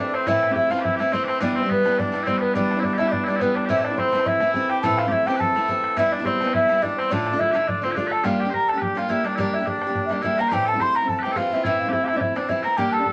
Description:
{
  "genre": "celtic folk, Celtic reel",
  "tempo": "211 BPM",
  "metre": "4/4",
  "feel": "swing 53% on 8ths",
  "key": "D dorian, G dorian from 8.2 s",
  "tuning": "A4 = 439 Hz",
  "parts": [
    { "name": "baroque flute", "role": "melody", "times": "0.0-13.1 s", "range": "B4 to C6", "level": "-25 LUFS", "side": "equal", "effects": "none" },
    { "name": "loud bright bagpipes", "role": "second line", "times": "0.0-13.1 s", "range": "B3 to C5", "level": "-27 LUFS", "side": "equal", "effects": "none" },
    { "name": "picked steel-string acoustic guitar", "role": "accompaniment", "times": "0.0-13.1 s", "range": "D2 to G4", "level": "-28 LUFS", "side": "equal", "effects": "none" },
    { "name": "bodhran", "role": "percussion", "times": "0.1-13.1 s", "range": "none", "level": "-35 LUFS", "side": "equal", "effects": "none" }
  ],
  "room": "moderate studio ambience, RT60 0.5 s",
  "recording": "none",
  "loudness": "-22 LUFS",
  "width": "mono",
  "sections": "0.0-8.2 A section; 8.2-13.1 B section",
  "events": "none",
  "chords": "0.0 Am; 1.4 Em; 3.7 Am; 6.0 Em; 7.1 Dm; 8.2 Gm; 10.5 Am",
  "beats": "| 0.28 0.56 0.84 1.13 | 1.41 1.70 1.98 2.27 | 2.55 2.84 3.12 3.41 | 3.69 3.98 4.26 4.55 | 4.83 5.12 5.40 5.69 | 5.97 6.26 6.54 6.82 | 7.11 7.39 7.68 7.96 | 8.24 8.53 8.81 9.10 | 9.38 9.66 9.95 10.23 | 10.51 10.80 11.08 11.36 | 11.65 11.93 12.21 12.49 | 12.78 13.06"
}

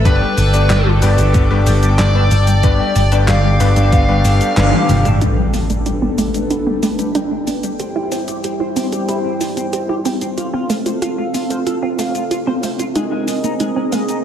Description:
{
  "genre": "synthwave",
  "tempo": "93 BPM",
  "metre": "4/4",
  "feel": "straight",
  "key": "unclear",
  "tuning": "A4 = 440 Hz",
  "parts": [
    { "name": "chorused pulse-width pad", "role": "sustained chords", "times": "0.0-14.2 s", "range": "G3 to D6", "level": "-21 LUFS", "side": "right 1 dB", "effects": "sidechain pumping" },
    { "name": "picked electric bass", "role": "bass", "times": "0.0-5.2 s", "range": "G1", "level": "-13 LUFS", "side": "equal", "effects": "sidechain pumping" },
    { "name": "smooth overdriven lead guitar", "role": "melody", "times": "0.1-5.1 s", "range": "B4 to F5", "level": "-21 LUFS", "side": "left 1 dB", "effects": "analog delay" },
    { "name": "twelve-string electric guitar", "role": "riff", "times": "0.1-14.2 s", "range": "G3 to C5", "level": "-26 LUFS", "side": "left 4 dB", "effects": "analog chorus, vintage 12-bit sampler grit, low-pass filter, analog delay" },
    { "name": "bright electric grand piano", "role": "stabs", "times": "0.1-5.2 s", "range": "G2 to B4", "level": "-22 LUFS", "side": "left 5 dB", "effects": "analog delay" },
    { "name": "clean 12-bit digital drum machine", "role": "drums", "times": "0.1-14.2 s", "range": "handclaps, hi-hat, shaker, snare drum, toms", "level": "-23 LUFS", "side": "equal", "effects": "none" },
    { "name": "electronic kick drum", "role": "drums", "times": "0.1-4.1 s", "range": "none", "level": "-14 LUFS", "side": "equal", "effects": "none" },
    { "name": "wide unison pluck", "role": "arpeggios", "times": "5.2-14.1 s", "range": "A3 to G4", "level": "-20 LUFS", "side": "right 2 dB", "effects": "analog delay" },
    { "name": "impact", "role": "sound effects", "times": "5.2-7.8 s", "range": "none", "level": "-22 LUFS", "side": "equal", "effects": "none" }
  ],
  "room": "wet plate reverb, RT60 2.1 s",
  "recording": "dreamy mix soaked in reverb, lossy compression artefacts",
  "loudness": "-13 LUFS",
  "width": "side -10 dB against mid",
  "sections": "0.0-5.2 A section; 5.2-14.2 B section",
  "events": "band accent 4.6-4.9; drum fill 4.7-5.2; impact 5.2-7.8; filter sweep on clean electric guitar 5.2-14.2",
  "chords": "0.1 Gadd9; 7.8 C/G; 10.4 F; 13.0 Abadd9",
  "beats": "| 0.05 0.70 1.34 1.99 | 2.63 3.28 3.92 4.57 | 5.21 5.86 6.50 7.15 | 7.79 8.44 9.09 9.73 | 10.38 11.02 11.67 12.31 | 12.96 13.60"
}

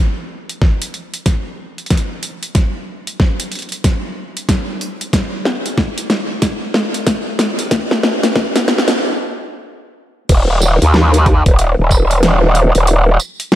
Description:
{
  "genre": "glitch hop",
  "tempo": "93 BPM",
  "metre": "4/4",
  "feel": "swing 62% on 16ths",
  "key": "unclear",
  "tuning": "A4 = 435 Hz",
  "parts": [
    { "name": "dubstep drum kit", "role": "drums", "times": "0.5-13.6 s", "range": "crash cymbal, hi-hat, rim click, snare drum, tambourine", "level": "-17 LUFS", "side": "equal", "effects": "studio reverb" },
    { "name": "electronic kick drum", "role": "drums", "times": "0.6-12.1 s", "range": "none", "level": "-14 LUFS", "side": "equal", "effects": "studio reverb" },
    { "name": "growl bass", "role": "bass", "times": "10.3-13.2 s", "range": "Eb1 to Eb2", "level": "-10 LUFS", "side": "equal", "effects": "chorus, overdrive" }
  ],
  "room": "moderate lush hall reverb, RT60 2.0 s, digital ambience",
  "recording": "high-pass filter",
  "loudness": "-13 LUFS",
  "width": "side -13 dB against mid",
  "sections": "0.0-10.3 A section; 10.3-13.6 B section",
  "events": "build-up 0.0-10.3; drum fill 0.0-9.0; stop 9.0-10.3; drop 10.3-13.6",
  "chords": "none",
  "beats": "0.62 1.26 1.91 | 2.56 3.20 3.85 4.49 | 5.14 5.78 6.43 7.07 | 7.72 8.36 9.01 9.65 | 10.30 10.94 11.59 12.23 | 12.88 13.52"
}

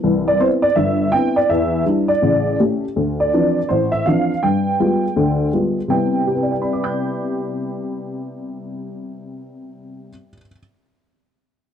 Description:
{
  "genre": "solo jazz",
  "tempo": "164 BPM",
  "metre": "4/4",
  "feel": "swing 63% on 8ths",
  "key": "C major",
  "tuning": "A4 = 442 Hz",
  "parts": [
    { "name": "honky-tonk upright piano", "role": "solo", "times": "0.0-10.6 s", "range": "G1 to G6", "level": "-17 LUFS", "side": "equal", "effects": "none" }
  ],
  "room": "little or no reverb",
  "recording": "dry, close 1970s-style studio recording",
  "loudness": "-16 LUFS",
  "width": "side -8 dB against mid",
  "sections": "0.0-3.0 A section; 3.0-5.9 B section; 5.9-8.8 C section",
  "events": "none",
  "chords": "0.0 Cmaj7; 1.5 Em7; 2.2 A7; 3.0 Dm9; 4.4 G7b9; 5.9 Cmaj7",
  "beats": "| 0.03 0.39 0.76 1.13 | 1.49 1.86 2.23 2.59 | 2.96 3.32 3.69 4.06 | 4.42 4.79 5.16 5.52 | 5.89 6.25 6.62 6.99 | 7.35 7.72 8.09 8.45"
}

